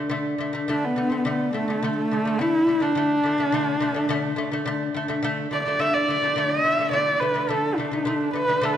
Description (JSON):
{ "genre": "mongolian traditional, Mongolian folk", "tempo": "106 BPM", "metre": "4/4", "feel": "straight", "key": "unclear", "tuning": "A4 = 440 Hz", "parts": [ { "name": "lute", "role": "arpeggios", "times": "0.0-8.8 s", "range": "D3 to A3", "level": "-25 LUFS", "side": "left 2 dB", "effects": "none" }, { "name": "warm horsehead fiddle", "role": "melody", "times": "0.7-8.8 s", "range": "A3 to E5", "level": "-22 LUFS", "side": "right 1 dB", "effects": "none" } ], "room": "moderate scoring stage reverb, RT60 1.7 s", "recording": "dark, warm production", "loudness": "-21 LUFS", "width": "side -10 dB against mid", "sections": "0.1-8.8 A section", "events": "none", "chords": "0.1 D5" }